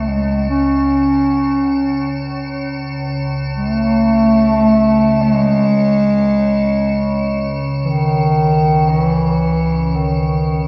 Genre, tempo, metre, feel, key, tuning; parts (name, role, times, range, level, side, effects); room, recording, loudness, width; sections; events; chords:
world meditative, free-time meditation music; free time; C# hirajoshi; A4 = 439 Hz
mellow bass clarinet; melody; 0.0-10.7 s; D#3 to C#4; -16 LUFS; equal; dub echo
icy glass pad; drone; 0.0-10.7 s; C#2 to C#3; -23 LUFS; equal; chorus, built-in reverb
wet spring reverb, RT60 2.4 s; echo-heavy mix, cassette tape; -16 LUFS; mono
0.0-10.7 A section